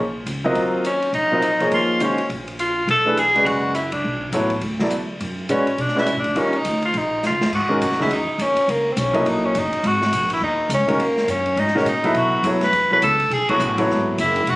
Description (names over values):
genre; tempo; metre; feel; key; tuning
modal jazz; 207 BPM; 4/4; swing 61% on 8ths; G# phrygian from 7.5 s; A4 = 440 Hz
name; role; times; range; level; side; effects
upright bass; bass; 0.0-14.6 s; E1 to B2; -27 LUFS; equal; none
open jazz drum kit; drums; 0.3-14.5 s; crash cymbal, hi-hat, kick drum, ride cymbal, snare drum; -29 LUFS; left 1 dB; none
clear grand piano; accompaniment; 0.4-14.2 s; C#3 to E5; -21 LUFS; equal; none
clear tenor saxophone; melody; 0.9-14.6 s; A#3 to B4; -19 LUFS; equal; plate reverb
room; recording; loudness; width
moderate studio reverb, RT60 0.5 s; recorded on a phone in the room, studio reverb, compression; -17 LUFS; side -20 dB against mid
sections
0.0-7.5 A section; 7.5-14.6 B section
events
band accent 3.9, 13.5; drum fill 7.2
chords
0.0 Ebm11; 2.9 Bm9; 6.4 Eb7; 7.5 G#9sus4; 12.1 B9sus4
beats
0.27 | 0.56 0.85 1.14 1.43 | 1.72 2.01 2.30 2.59 | 2.88 3.17 3.46 3.75 | 4.04 4.33 4.62 4.91 | 5.20 5.49 5.78 6.07 | 6.36 6.65 6.94 7.23 | 7.52 7.81 8.10 8.39 | 8.68 8.97 9.26 9.55 | 9.84 10.12 10.41 10.70 | 10.99 11.28 11.57 11.86 | 12.15 12.44 12.73 13.02 | 13.31 13.60 13.88 14.17 | 14.46